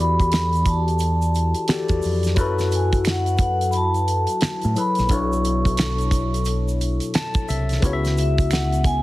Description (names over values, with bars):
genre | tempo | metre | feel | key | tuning
R&B, neo-soul | 88 BPM | 4/4 | swing 63% on 16ths | F# minor | A4 = 440 Hz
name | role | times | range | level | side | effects
vibraphone with medium hard mallets | melody | 0.0-9.0 s | E5 to C#6 | -25 LUFS | equal | none
barky tine electric piano | accompaniment | 0.0-9.0 s | B2 to A5 | -25 LUFS | left 3 dB | phaser
deep dub fingered electric bass | bass | 0.0-9.0 s | A#1 to A2 | -22 LUFS | equal | none
damped 70s drum kit | drums | 0.2-9.0 s | hi-hat, kick drum, snare drum | -23 LUFS | right 1 dB | none
egg shaker and finger snaps | percussion | 0.2-9.0 s | none | -36 LUFS | right 5 dB | none
room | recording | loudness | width
light reverb, small room ambience | heavily compressed radio sound, multiband compression | -18 LUFS | side -17 dB against mid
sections
0.0-9.0 A section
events
tine electric piano fill 6.8-7.8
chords
0.0 Em11; 2.4 F#m11; 5.1 Bm11; 7.8 C#m11